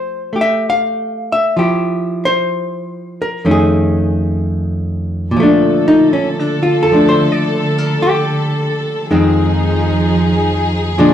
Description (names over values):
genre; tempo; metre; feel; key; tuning
jazz ballad; 64 BPM; 4/4; swing 68% on 8ths; F major, Bb major from 5.3 s; A4 = 441 Hz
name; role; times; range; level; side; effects
hollow-body jazz guitar; accompaniment; 0.0-11.1 s; F2 to F5; -13 LUFS; equal; none
warm studio string section; sustained chords; 5.3-11.1 s; D3 to A4; -17 LUFS; equal; none
room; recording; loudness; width
wet studio reverb, RT60 0.6 s; heard from further back in the room; -12 LUFS; side -10 dB against mid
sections
0.0-5.3 A section; 5.3-11.1 B section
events
none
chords
0.0 Fmaj9; 3.4 F7alt; 5.3 Bbmaj7; 9.1 Fm7